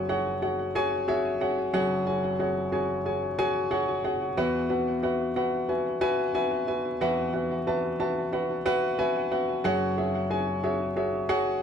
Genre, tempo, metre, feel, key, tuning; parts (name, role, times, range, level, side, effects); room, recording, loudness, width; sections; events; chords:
pop; 91 BPM; 4/4; straight; A4 = 443 Hz
warm baby grand piano; solo; 0.0-11.6 s; F#1 to A5; -25 LUFS; equal; tape echo
moderate small room reverb, RT60 0.5 s; vinyl crackle; -25 LUFS; side -7 dB against mid
0.0-11.6 A section
0.0 F#sus2; 4.4 Esus2; 9.6 F#sus2